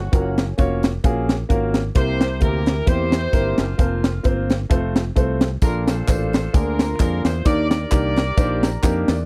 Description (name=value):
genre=uptempo gospel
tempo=131 BPM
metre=4/4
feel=swing 56% on 8ths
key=Bb major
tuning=A4 = 439 Hz
part: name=warm horn section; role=melody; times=0.0-9.0 s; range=Bb3 to D5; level=-29 LUFS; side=equal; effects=none
part: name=fingered electric bass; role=bass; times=0.0-9.3 s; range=F1 to F2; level=-26 LUFS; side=equal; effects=none
part: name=warm upright piano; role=accompaniment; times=0.1-9.3 s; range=Bb2 to Bb5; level=-26 LUFS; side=equal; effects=none
part: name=crisp fusion drum kit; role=drums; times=0.1-9.2 s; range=hi-hat, kick drum, snare drum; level=-21 LUFS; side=equal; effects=none
part: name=tambourine and handclaps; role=percussion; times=5.6-9.2 s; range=none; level=-37 LUFS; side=equal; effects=none
room=little or no reverb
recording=dry, close 1970s-style studio recording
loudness=-20 LUFS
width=mono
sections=0.0-9.3 A section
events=upright piano fill 8.4-9.3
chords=0.1 Gbmaj7; 2.0 C7; 3.8 Fsus4; 4.7 F; 5.6 Bbmaj7; 6.5 Bb7/D; 7.5 Ebmaj7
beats=| 0.13 0.58 1.04 1.50 | 1.96 2.42 2.88 3.33 | 3.79 4.25 4.71 5.17 | 5.62 6.08 6.54 7.00 | 7.46 7.91 8.37 8.83